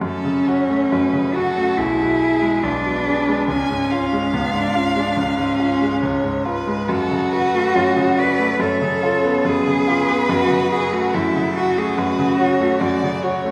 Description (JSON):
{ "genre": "classical, slow romantic movement for piano trio", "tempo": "70 BPM", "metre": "4/4", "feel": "rubato", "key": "F# minor", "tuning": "A4 = 439 Hz", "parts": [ { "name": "rich violin", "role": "melody", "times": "0.0-13.5 s", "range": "G#4 to G#5", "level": "-28 LUFS", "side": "equal", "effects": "none" }, { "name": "clear cello", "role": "second line", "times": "0.0-13.2 s", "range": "B3 to B4", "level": "-22 LUFS", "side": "equal", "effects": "none" }, { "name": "bright grand piano", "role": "accompaniment", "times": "0.0-13.5 s", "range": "B1 to G#4", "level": "-23 LUFS", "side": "equal", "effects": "none" } ], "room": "wet scoring stage reverb, RT60 1.6 s", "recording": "heard from further back in the room", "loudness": "-19 LUFS", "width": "mono", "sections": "0.0-13.5 A section", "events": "none", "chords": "0.0 F#m; 1.8 G#dim/B; 3.5 C#; 6.9 F#m; 8.6 C#7/F#; 10.3 F#m", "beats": "| 0.03 0.91 1.77 2.63 | 3.49 4.33 5.16 6.02 | 6.88 7.75 8.61 9.45 | 10.29 11.14 11.98 12.80" }